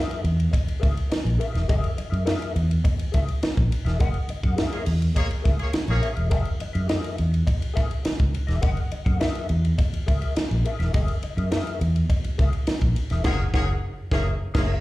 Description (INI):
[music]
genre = funk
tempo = 104 BPM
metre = 4/4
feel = straight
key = F# mixolydian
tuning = A4 = 439 Hz
[part]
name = mellow electric guitar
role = accompaniment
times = 0.0-14.7 s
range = G#4 to F#5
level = -32 LUFS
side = left 4 dB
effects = wah, slapback echo
[part]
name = compact cocktail drum kit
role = drums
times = 0.1-14.7 s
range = crash cymbal, hi-hat, kick drum, ride cymbal, snare drum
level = -24 LUFS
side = equal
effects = none
[part]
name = fingered electric bass with an envelope filter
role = bass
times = 0.2-14.7 s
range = E1 to F#2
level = -23 LUFS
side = equal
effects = none
[part]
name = cowbell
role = percussion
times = 0.5-12.8 s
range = none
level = -41 LUFS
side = left 3 dB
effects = slapback echo
[part]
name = warm horn section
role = second line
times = 4.7-6.1, 13.2-14.7 s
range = A#3 to C#5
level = -31 LUFS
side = equal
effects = slapback echo
[sound]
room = small room reverb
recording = live gig heard through the venue's PA, club reverb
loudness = -21 LUFS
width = side -18 dB against mid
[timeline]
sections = 0.0-14.8 A section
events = band accent 4.0-6.3, 13.2-14.8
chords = 0.0 F#9